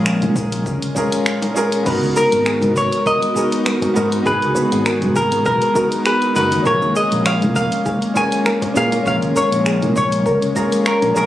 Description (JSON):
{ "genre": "sunset chillout", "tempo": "100 BPM", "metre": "4/4", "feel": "swing 54% on 16ths", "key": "G# dorian", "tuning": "A4 = 440 Hz", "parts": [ { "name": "semi-hollow electric guitar", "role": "melody", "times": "0.0-11.3 s", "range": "G#4 to G#5", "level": "-19 LUFS", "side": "left 1 dB", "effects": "ping-pong delay" }, { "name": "bright grand piano", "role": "accompaniment", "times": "0.0-11.3 s", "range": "B3 to A#4", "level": "-22 LUFS", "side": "equal", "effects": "auto-pan, digital delay" }, { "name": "airy breathy pad", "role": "sustained chords", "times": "0.0-11.3 s", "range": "A#2 to A#4", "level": "-22 LUFS", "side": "left 1 dB", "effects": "chorus" }, { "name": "fretless electric bass", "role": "bass", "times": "0.0-11.3 s", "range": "F#1 to A#2", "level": "-21 LUFS", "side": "equal", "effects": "wide subtle chorus" }, { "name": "deep house drum kit", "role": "drums", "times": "0.1-11.3 s", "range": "crash cymbal, finger snaps, hi-hat, shaker", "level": "-25 LUFS", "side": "equal", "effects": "studio reverb" }, { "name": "congas and bongos", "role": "percussion", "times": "0.2-11.1 s", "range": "none", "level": "-28 LUFS", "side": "left 1 dB", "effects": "none" }, { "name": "electronic kick drum", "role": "drums", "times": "0.4-10.7 s", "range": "none", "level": "-28 LUFS", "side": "equal", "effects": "studio reverb" }, { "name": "soft round pluck", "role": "arpeggios", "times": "1.9-11.3 s", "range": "G#4 to A#5", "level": "-24 LUFS", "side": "right 1 dB", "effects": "chorus, digital delay" } ], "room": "light reverb, digital ambience", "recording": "recorded on a phone in the room, club reverb", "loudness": "-15 LUFS", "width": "side -13 dB against mid", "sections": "0.0-1.9 A section; 1.9-11.3 B section", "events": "none", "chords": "0.0 A#m7; 1.9 G#m9; 6.7 A#m7" }